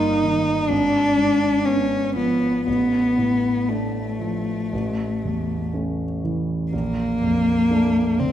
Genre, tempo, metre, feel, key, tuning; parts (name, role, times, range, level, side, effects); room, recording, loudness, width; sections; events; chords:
classical, romantic duo for cello and grand piano; 58-65 BPM; 4/4; rubato; A4 = 437 Hz
rich cello; melody; 0.0-8.3 s; A3 to Eb4; -20 LUFS; left 1 dB
warm concert grand piano; accompaniment; 0.0-8.3 s; G1 to Eb4; -24 LUFS; right 1 dB
wet scoring stage reverb, RT60 2.2 s; minimal, uncompressed stereo recording; -19 LUFS; side -11 dB against mid
0.0-8.3 A section
0.0 Eb/G; 0.7 G#dim7; 2.7 Dm/A; 4.7 A; 6.7 Bbmaj7